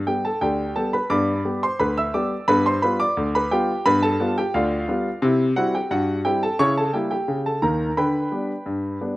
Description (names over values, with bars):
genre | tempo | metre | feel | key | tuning
ragtime piano | 87 BPM | 2/4 | straight | G major | A4 = 440 Hz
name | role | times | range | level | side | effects
clear concert grand piano | solo | 0.1-9.2 s | D2 to E6 | -19 LUFS | equal | slapback echo
room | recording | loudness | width
light reverb | recorded outdoors, with no room sound | -19 LUFS | side -18 dB against mid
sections
0.0-9.2 A section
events
none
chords
0.0 G; 2.5 G7; 5.2 C; 6.6 C#dim7; 8.0 G/D